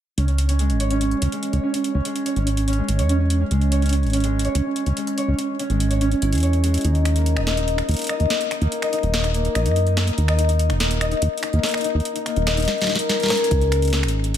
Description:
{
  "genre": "IDM",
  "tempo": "144 BPM",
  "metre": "4/4",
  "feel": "straight",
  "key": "C# dorian",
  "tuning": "A4 = 440 Hz",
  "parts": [
    { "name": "concert harp", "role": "arpeggios", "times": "0.2-14.4 s", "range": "G#3 to D#5", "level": "-23 LUFS", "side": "left 2 dB", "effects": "low-pass filter, digital delay" },
    { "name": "deep acid bass", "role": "bass", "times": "0.2-14.4 s", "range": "D#1 to F#2", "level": "-19 LUFS", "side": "equal", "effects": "tube saturation" },
    { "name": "booming analog drum machine", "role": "drums", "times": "0.2-14.4 s", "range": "finger snaps, hi-hat, snare drum", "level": "-26 LUFS", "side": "equal", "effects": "ping-pong delay" },
    { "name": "electronic kick drum", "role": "drums", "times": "13.5-13.6 s", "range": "none", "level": "-24 LUFS", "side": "equal", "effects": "none" }
  ],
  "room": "light reverb",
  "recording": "none",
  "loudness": "-18 LUFS",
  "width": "side -10 dB against mid",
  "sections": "0.2-13.5 A section",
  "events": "drum fill 12.7-13.5",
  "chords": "0.2 C#m; 6.8 D#7(no3); 13.5 C#5"
}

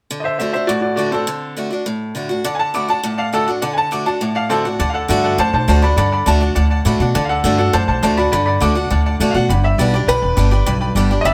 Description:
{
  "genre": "rockabilly",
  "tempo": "204 BPM",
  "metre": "4/4",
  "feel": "straight",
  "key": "D major",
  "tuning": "A4 = 439 Hz",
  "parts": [
    { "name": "picked steel-string acoustic guitar", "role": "accompaniment", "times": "0.1-11.3 s", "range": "G2 to G4", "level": "-22 LUFS", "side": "equal", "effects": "none" },
    { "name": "bright upright piano", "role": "melody", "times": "0.2-11.3 s", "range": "C4 to D6", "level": "-21 LUFS", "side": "equal", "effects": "none" },
    { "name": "tack piano", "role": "accompaniment", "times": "2.4-11.3 s", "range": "D5 to B5", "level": "-28 LUFS", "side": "equal", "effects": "none" },
    { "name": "upright bass", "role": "bass", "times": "4.8-11.3 s", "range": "E1 to B2", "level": "-19 LUFS", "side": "equal", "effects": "none" }
  ],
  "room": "light reverb",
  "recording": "band playing live in one room",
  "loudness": "-17 LUFS",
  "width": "mono",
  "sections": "0.1-4.8 A section; 4.8-11.3 B section",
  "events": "none",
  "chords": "0.1 D; 9.5 G"
}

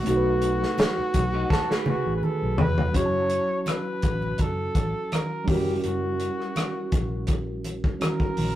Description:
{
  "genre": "lush 1970s-style soul",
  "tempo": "83 BPM",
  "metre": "4/4",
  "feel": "swing 54% on 16ths",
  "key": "F# dorian",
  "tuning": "A4 = 440 Hz",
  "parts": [
    { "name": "clear flugelhorn", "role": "melody", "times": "0.0-8.6 s", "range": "F#4 to C#5", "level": "-29 LUFS", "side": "right 1 dB", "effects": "none" },
    { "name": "tine electric piano", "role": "accompaniment", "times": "0.0-8.6 s", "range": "F#3 to A5", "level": "-29 LUFS", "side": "equal", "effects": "fast stereo tremolo" },
    { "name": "vintage muted fingered electric bass", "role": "bass", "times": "0.1-8.6 s", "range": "E#1 to B1", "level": "-30 LUFS", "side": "equal", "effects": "none" },
    { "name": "warm soul drum kit", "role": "drums", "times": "0.1-8.6 s", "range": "hi-hat, kick drum, rim click, snare drum, toms", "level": "-26 LUFS", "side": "equal", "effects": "none" },
    { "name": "congas", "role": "percussion", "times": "0.8-8.6 s", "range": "none", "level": "-31 LUFS", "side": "right 1 dB", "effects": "none" },
    { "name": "electric guitar through a small old amp", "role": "riff", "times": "1.3-2.7 s", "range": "D#4 to B4", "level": "-30 LUFS", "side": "right 2 dB", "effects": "none" }
  ],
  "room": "moderate studio reverb, RT60 0.6 s",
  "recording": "rough rehearsal-room recording, tube saturation",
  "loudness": "-22 LUFS",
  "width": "side -13 dB against mid",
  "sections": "0.0-2.9 A section; 2.9-8.6 B section",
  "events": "drum fill 1.5-2.9",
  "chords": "0.0 B7; 2.9 F#m7; 5.5 F#7b9"
}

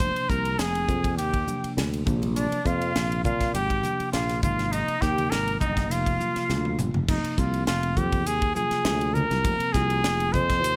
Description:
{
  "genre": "electric jazz fusion",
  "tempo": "102 BPM",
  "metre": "4/4",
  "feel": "straight",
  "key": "F dorian",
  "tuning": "A4 = 437 Hz",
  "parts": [
    { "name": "clear trumpet", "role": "melody", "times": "0.0-10.8 s", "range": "D4 to C5", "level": "-29 LUFS", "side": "equal", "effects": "slapback echo" },
    { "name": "breathy bright concert flute", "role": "second line", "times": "0.0-6.8 s", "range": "D5 to C6", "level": "-37 LUFS", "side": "equal", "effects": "none" },
    { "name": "bell-like tine electric piano", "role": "accompaniment", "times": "0.0-10.8 s", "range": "C3 to F4", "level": "-34 LUFS", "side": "equal", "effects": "none" },
    { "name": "sustaining fretless electric bass", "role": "bass", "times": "0.0-10.8 s", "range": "F1 to Bb2", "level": "-30 LUFS", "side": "equal", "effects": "none" },
    { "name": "crisp fusion drum kit", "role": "drums", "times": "0.0-10.8 s", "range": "crash cymbal, hi-hat, kick drum, ride cymbal, snare drum, toms", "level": "-32 LUFS", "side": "equal", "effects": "none" },
    { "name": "congas", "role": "percussion", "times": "0.9-10.5 s", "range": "none", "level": "-36 LUFS", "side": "equal", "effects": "none" }
  ],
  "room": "little or no reverb",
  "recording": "none",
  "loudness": "-25 LUFS",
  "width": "mono",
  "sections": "0.0-7.1 A section; 7.1-10.8 A section",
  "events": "drum fill 6.5-7.1",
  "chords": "0.0 Fm9; 2.1 Bbadd9; 4.4 Abmaj9; 5.9 F5; 7.1 Fm7"
}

